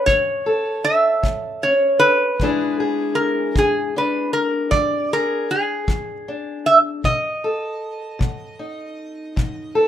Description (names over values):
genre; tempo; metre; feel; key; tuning
acoustic country blues, solo or duo; 52 BPM (dotted quarters); 12/8; straight; E mixolydian; A4 = 440 Hz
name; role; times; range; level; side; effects
metal-body resonator slide guitar; melody; 0.0-9.9 s; G#4 to E5; -18 LUFS; right 1 dB; none
fingerpicked steel-string acoustic guitar; accompaniment; 0.0-9.9 s; A2 to A4; -22 LUFS; left 2 dB; none
kick drum; drums; 0.1-9.6 s; none; -23 LUFS; left 1 dB; none
room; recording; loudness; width
light reverb; minimal, uncompressed stereo recording; -17 LUFS; side -10 dB against mid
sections
0.0-9.9 A section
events
none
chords
0.0 A; 2.4 E7; 7.1 B7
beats
0.07 1.24 | 2.40 3.56 4.73 5.89 | 7.05 8.21 9.38